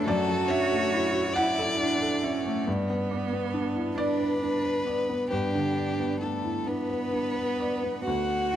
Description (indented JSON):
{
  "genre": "neoclassical piano and strings",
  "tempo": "45 BPM (dotted quarters)",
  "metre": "6/8",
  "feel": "rubato",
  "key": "unclear",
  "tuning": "A4 = 440 Hz",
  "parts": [
    { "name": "rich violin", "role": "melody", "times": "0.0-8.6 s", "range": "G4 to F#5", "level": "-30 LUFS", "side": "left 3 dB", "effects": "none" },
    { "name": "warm cello", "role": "second line", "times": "0.0-8.6 s", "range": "A3 to F#4", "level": "-30 LUFS", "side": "right 5 dB", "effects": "none" },
    { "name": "felt-muted upright piano", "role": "accompaniment", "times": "0.0-8.6 s", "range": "D2 to F#5", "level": "-28 LUFS", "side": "left 1 dB", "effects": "none" }
  ],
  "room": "moderate plate reverb, RT60 2.5 s",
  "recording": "faint mains hum",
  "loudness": "-25 LUFS",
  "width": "side -10 dB against mid",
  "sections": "0.0-8.1 A section",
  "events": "none",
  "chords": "0.0 Dadd9/F#; 2.7 G"
}